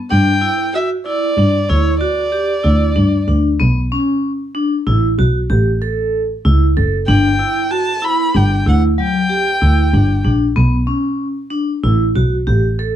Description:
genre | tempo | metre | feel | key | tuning
progressive instrumental, band music in an uneven meter | 189 BPM (eighths) | 11/8 | straight | G lydian | A4 = 440 Hz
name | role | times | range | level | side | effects
dark violin | melody | 0.1-10.2 s | C#5 to B5 | -18 LUFS | equal | plate reverb
vibraphone with medium hard mallets | arpeggios | 0.1-13.0 s | F#3 to A4 | -18 LUFS | equal | none
warm double bass | bass | 0.1-13.0 s | F#1 to G2 | -14 LUFS | equal | none
room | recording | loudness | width
light reverb | dark, warm production | -13 LUFS | side -10 dB against mid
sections
0.1-13.0 A section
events
none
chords
0.1 G5; 3.6 B7(no3); 5.5 A; 7.1 G5; 10.6 B7(no3)

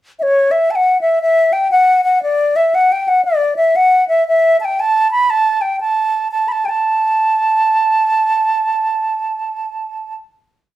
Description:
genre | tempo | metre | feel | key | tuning
celtic folk | 117 BPM | 3/4 | swing 62% on 8ths | A mixolydian | A4 = 440 Hz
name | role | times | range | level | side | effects
wooden flute | solo | 0.2-10.1 s | C#5 to B5 | -12 LUFS | equal | none
room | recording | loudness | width
wet small room reverb, RT60 0.6 s | heard from further back in the room | -12 LUFS | side -14 dB against mid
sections
0.2-6.3 A section; 6.3-9.4 final note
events
none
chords
none

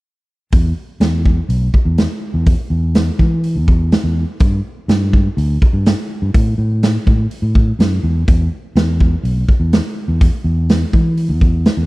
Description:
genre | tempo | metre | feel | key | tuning
blues rock power trio and southern rock | 124 BPM | 4/4 | straight | unclear | A4 = 440 Hz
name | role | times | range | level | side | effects
fingered electric bass | bass | 0.5-11.9 s | B1 to E3 | -15 LUFS | equal | none
raw garage drum kit | drums | 0.5-11.8 s | hi-hat, kick drum, snare drum | -14 LUFS | equal | none
room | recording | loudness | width
little or no reverb | dry, close 1970s-style studio recording | -13 LUFS | side -20 dB against mid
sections
0.5-11.9 A section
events
none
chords
none

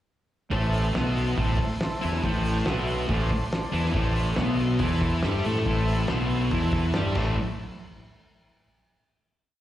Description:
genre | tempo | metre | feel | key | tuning
garage rock duo or trio | 140 BPM | 4/4 | straight | A minor | A4 = 440 Hz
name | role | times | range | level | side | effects
combo organ | sustained chords | 0.5-7.4 s | A4 to C6 | -34 LUFS | equal | lush chorus
thick fuzz guitar | riff | 0.5-7.3 s | A2 to A4 | -28 LUFS | left 1 dB | distortion, slapback echo
growling fingered electric bass | bass | 0.5-7.4 s | A1 to A2 | -26 LUFS | equal | overdrive
cloth-damped thuddy drum kit | drums | 0.5-7.3 s | crash cymbal, hi-hat, kick drum, snare drum | -30 LUFS | equal | none
room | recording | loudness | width
light reverb | live gig heard through the venue's PA, recital hall reverb | -23 LUFS | side -13 dB against mid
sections
0.5-7.4 riff; 7.4-9.1 final hit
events
drum fill 7.2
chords
0.5 Am; 7.4 N.C.

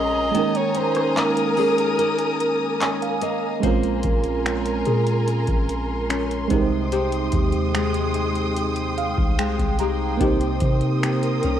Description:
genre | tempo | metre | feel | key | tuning
contemporary R&B | 73 BPM | 4/4 | straight | Bb dorian | A4 = 440 Hz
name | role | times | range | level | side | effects
breathy alto saxophone | melody | 0.0-3.2 s | Bb4 to Eb5 | -23 LUFS | equal | cassette tape
mellow FM electric piano | accompaniment | 0.0-11.6 s | Ab3 to Bb5 | -25 LUFS | right 8 dB | chorus, cassette tape
warm studio string section | sustained chords | 0.0-11.6 s | Ab3 to Eb6 | -27 LUFS | equal | cassette tape
nylon-string guitar | arpeggios | 0.0-11.6 s | C3 to C5 | -27 LUFS | left 9 dB | cassette tape, analog delay
soft 808-style bass | bass | 0.0-11.6 s | Bb1 to C3 | -26 LUFS | equal | none
booming analog drum machine | drums | 0.3-11.6 s | finger snaps, handclaps, hi-hat, kick drum, rim click | -25 LUFS | equal | cassette tape
room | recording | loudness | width
light reverb, small room reverb | home recording on cassette | -19 LUFS | side -10 dB against mid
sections
0.0-3.6 A section; 3.6-11.6 B section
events
kick muted 0.3-3.6; FM electric piano fill 2.4-3.6, 8.6-10.2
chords
0.3 Eb7sus4; 3.6 Bbm9; 6.5 Abmaj7/C; 10.2 Cm7

